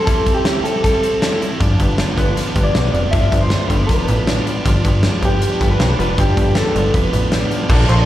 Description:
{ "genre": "jangly indie pop", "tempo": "157 BPM", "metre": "4/4", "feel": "straight", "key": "unclear", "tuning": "A4 = 442 Hz", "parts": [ { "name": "electric guitar through a small old amp", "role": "melody", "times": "0.0-8.1 s", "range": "G4 to E5", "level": "-21 LUFS", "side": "equal", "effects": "spring reverb, slapback echo" }, { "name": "biting overdriven guitar", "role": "accompaniment", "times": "0.0-8.1 s", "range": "G2 to A4", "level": "-25 LUFS", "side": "right 4 dB", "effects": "none" }, { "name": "direct-recorded clean electric guitar", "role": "arpeggios", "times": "0.0-8.1 s", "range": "F3 to E4", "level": "-23 LUFS", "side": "left 3 dB", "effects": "slapback echo" }, { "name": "big rock drum kit", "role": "drums", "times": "0.1-8.0 s", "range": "crash cymbal, hi-hat, kick drum, ride cymbal, snare drum", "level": "-18 LUFS", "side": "equal", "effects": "none" }, { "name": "plucky analog bass", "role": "bass", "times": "1.6-8.1 s", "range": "F1 to B1", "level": "-17 LUFS", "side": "equal", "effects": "none" } ], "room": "light reverb", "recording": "live gig heard through the venue's PA, recital hall reverb", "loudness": "-14 LUFS", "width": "side -13 dB against mid", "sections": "0.0-7.7 A section", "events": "none", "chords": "0.0 Am7; 1.6 G7" }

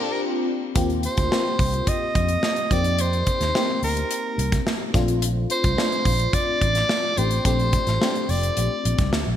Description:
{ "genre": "polished 1980s jazz-funk pop", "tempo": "108 BPM", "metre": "4/4", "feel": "straight", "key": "unclear", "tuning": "A4 = 440 Hz", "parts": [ { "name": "breathy soprano saxophone", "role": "melody", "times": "0.0-9.1 s", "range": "A4 to Eb5", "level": "-25 LUFS", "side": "right 1 dB", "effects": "none" }, { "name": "FM electric piano", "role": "accompaniment", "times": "0.0-9.4 s", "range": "A3 to G4", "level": "-27 LUFS", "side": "left 4 dB", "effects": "ensemble chorus" }, { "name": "warm analog pad", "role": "sustained chords", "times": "0.0-0.7 s", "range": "Bb3 to G4", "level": "-41 LUFS", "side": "left 1 dB", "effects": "none" }, { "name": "fretless electric bass", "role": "bass", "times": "0.8-9.4 s", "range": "F1 to F2", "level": "-24 LUFS", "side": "equal", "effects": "ensemble chorus" }, { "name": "modern studio drum kit", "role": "drums", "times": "0.8-9.3 s", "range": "hi-hat, kick drum, snare drum", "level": "-25 LUFS", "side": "equal", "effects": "gated reverb" } ], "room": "light reverb", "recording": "bright 1980s-style digital production", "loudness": "-20 LUFS", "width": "side -10 dB against mid", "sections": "0.8-9.4 A section", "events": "band accent 0.0-0.8", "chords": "0.0 Bb69; 0.8 Eb69; 4.9 Bbmaj9" }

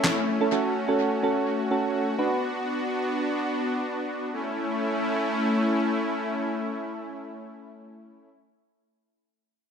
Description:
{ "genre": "pop", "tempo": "126 BPM", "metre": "4/4", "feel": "straight", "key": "A major", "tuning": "A4 = 442 Hz", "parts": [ { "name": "soft electric-piano-like synth keys", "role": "accompaniment", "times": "0.0-2.4 s", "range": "C#4 to B4", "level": "-25 LUFS", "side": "right 3 dB", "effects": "chorus" }, { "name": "soft supersaw", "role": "sustained chords", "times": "0.0-8.3 s", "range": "A3 to F#4", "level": "-26 LUFS", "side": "left 1 dB", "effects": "none" }, { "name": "downlifter", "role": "sound effects", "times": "0.0-0.5 s", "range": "none", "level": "barely audible", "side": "none", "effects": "none" } ], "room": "moderate plate reverb, RT60 2.2 s", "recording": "echo-heavy mix", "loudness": "-24 LUFS", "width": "side -7 dB against mid", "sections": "0.0-4.3 A section; 4.3-8.1 B section", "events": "none", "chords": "0.0 A; 0.5 F#m; 2.2 Bm; 4.3 A" }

